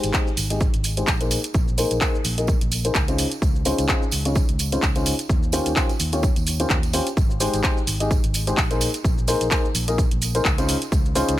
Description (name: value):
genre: piano house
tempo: 128 BPM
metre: 4/4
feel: swing 56% on 16ths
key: Ab major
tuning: A4 = 440 Hz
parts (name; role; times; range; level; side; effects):
- clear upright piano; riff; 0.0-11.3 s; Db3 to Eb5; -25 LUFS; left 2 dB; vintage 12-bit sampler grit, sidechain pumping, low-pass filter, ping-pong delay
- fingered electric bass; bass; 0.0-11.3 s; Ab1 to Eb2; -26 LUFS; equal; sidechain pumping
- garage drum kit; drums; 0.0-11.4 s; handclaps, hi-hat, shaker; -25 LUFS; equal; none
- tambourine; percussion; 0.0-11.4 s; none; -34 LUFS; right 8 dB; none
- electronic kick drum; drums; 0.1-11.0 s; none; -22 LUFS; equal; overdrive
room: little or no reverb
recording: none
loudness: -19 LUFS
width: side -14 dB against mid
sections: 0.0-11.4 A section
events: none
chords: 0.0 Abmaj7; 1.3 Bb9sus4; 3.2 Dbmaj9; 5.3 Eb13; 7.2 Abmaj7; 8.8 Bb9sus4; 10.7 Dbmaj9